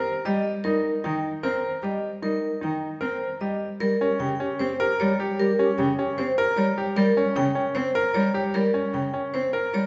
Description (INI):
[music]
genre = classical, minimalist pattern music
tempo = 152 BPM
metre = 4/4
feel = straight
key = unclear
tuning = A4 = 440 Hz
[part]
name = vibraphone with medium hard mallets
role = melody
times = 0.0-9.9 s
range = Bb4 to G5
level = -30 LUFS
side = equal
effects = none
[part]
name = mellow hollow wooden-headed alto flute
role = second line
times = 0.0-0.4, 3.8-6.7 s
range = G4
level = -33 LUFS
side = equal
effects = none
[part]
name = bright grand piano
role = arpeggios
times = 0.0-9.8 s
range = Db4 to Bb4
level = -30 LUFS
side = equal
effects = none
[part]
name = rich cello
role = accompaniment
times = 0.3-9.9 s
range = Db3 to C4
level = -30 LUFS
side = equal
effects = none
[sound]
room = wet recital hall reverb, RT60 1.6 s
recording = heard from further back in the room, nothing above 7.9 kHz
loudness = -25 LUFS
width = mono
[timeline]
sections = 0.0-3.8 A section; 3.8-9.9 B section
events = none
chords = 0.0 Eb; 3.8 Bbm6/Db